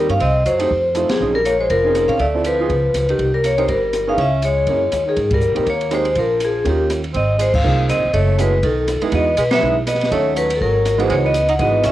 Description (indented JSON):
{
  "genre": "jazz, small-group swing and bop",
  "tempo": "242 BPM",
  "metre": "4/4",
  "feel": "swing 57% on 8ths",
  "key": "unclear",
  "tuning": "A4 = 438 Hz",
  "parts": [
    { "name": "vibraphone with medium hard mallets", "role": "melody", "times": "0.0-11.9 s", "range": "G4 to Gb5", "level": "-17 LUFS", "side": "left 2 dB", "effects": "cassette tape" },
    { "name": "breathy tenor saxophone", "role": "second line", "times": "0.0-11.9 s", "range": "Eb3 to Eb4", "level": "-26 LUFS", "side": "right 6 dB", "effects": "cassette tape" },
    { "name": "clear upright piano", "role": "accompaniment", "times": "0.0-11.9 s", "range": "Fb3 to Bb4", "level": "-23 LUFS", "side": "right 6 dB", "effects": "cassette tape" },
    { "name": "upright bass", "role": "bass", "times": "0.0-11.9 s", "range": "F1 to B2", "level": "-21 LUFS", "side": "equal", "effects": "none" },
    { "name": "open jazz drum kit", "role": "drums", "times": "0.1-11.9 s", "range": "crash cymbal, hi-hat, kick drum, ride cymbal, rim click, snare drum", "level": "-26 LUFS", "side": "equal", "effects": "none" }
  ],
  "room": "moderate small room reverb, RT60 0.5 s",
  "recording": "home recording on cassette",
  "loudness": "-15 LUFS",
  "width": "side -14 dB against mid",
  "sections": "0.0-7.1 A section; 7.1-11.9 B section",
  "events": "band accent 1.1, 5.3, 7.5, 9.5",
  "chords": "0.2 Cm; 0.7 F7; 1.2 Bbm11; 2.2 Dm7; 2.7 Db7; 3.2 Cm7; 4.2 Dbm; 4.7 Gb9; 5.2 Abmaj9; 6.2 Bb5; 6.7 Eb9; 7.1 Ab69; 8.1 Gbm9; 8.6 B7; 9.1 Emaj7; 10.1 Ebm7b5; 10.6 Ab5; 11.1 Dbm11",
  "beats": "| 0.20 0.45 0.70 0.95 | 1.20 1.45 1.70 1.94 | 2.19 2.44 2.69 2.94 | 3.19 3.43 3.68 3.93 | 4.18 4.42 4.67 4.92 | 5.17 5.42 5.66 5.91 | 6.16 6.41 6.65 6.90 | 7.15 7.39 7.64 7.89 | 8.13 8.38 8.63 8.88 | 9.12 9.37 9.62 9.86 | 10.11 10.36 10.60 10.85 | 11.10 11.34 11.59 11.84"
}